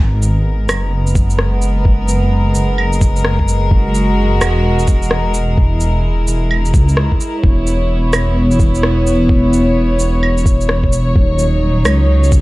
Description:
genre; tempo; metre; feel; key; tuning
future garage; 129 BPM; 4/4; swing 63% on 16ths; G# minor; A4 = 440 Hz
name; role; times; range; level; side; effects
warm chamber string section; sustained chords; 0.0-12.4 s; F#3 to C#5; -18 LUFS; equal; sidechain pumping
dark detuned saw bass; bass; 0.0-12.4 s; D#1 to C#2; -14 LUFS; equal; sidechain pumping
electronic shaker, rim click and claves; drums; 0.2-12.4 s; none; -20 LUFS; right 1 dB; vintage 12-bit sampler grit, small room reverb
electronic kick drum; drums; 1.2-12.4 s; none; -13 LUFS; equal; vintage 12-bit sampler grit, small room reverb
room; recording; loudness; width
light reverb, digital ambience; none; -11 LUFS; side -19 dB against mid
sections
0.0-12.4 A section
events
none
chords
0.0 G#madd9; 3.7 F#add9; 7.4 C#m7/E; 11.2 D#m7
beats
| 0.00 0.46 0.93 1.39 | 1.86 2.32 2.79 3.25 | 3.72 4.18 4.65 5.11 | 5.58 6.04 6.51 6.97 | 7.44 7.90 8.37 8.83 | 9.30 9.76 10.23 10.69 | 11.16 11.62 12.09

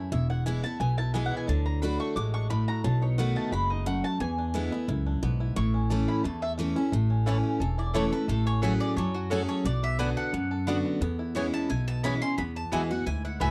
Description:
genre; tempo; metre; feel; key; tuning
bluegrass; 176 BPM; 4/4; straight; A major; A4 = 440 Hz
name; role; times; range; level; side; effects
bluegrass banjo; melody; 0.0-13.5 s; E3 to A4; -42 LUFS; equal; none
picked steel-string acoustic guitar; accompaniment; 0.0-13.5 s; E2 to G#4; -32 LUFS; equal; none
mandolin; stabs; 0.1-13.5 s; A3 to D6; -35 LUFS; equal; none
upright bass; bass; 0.1-13.5 s; E1 to F#2; -31 LUFS; equal; none
mandolin; melody; 7.8-13.5 s; F#4 to C6; -38 LUFS; equal; none
room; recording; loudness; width
little or no reverb; dry, close 1970s-style studio recording; -28 LUFS; mono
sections
0.0-6.9 A section; 6.9-13.5 B section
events
mandolin solo 0.0-6.9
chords
0.1 E; 1.5 D; 2.8 B7; 4.2 E7; 5.6 A; 8.3 F#madd9/A; 9.7 Bm; 11.0 E6; 12.4 Eadd9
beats
| 0.12 0.46 0.80 1.14 | 1.48 1.82 2.17 2.50 | 2.85 3.19 3.53 3.87 | 4.21 4.55 4.89 5.23 | 5.57 5.91 6.25 6.58 | 6.93 7.27 7.61 7.95 | 8.29 8.63 8.97 9.31 | 9.65 9.99 10.33 10.68 | 11.02 11.36 11.70 12.04 | 12.38 12.72 13.07 13.41

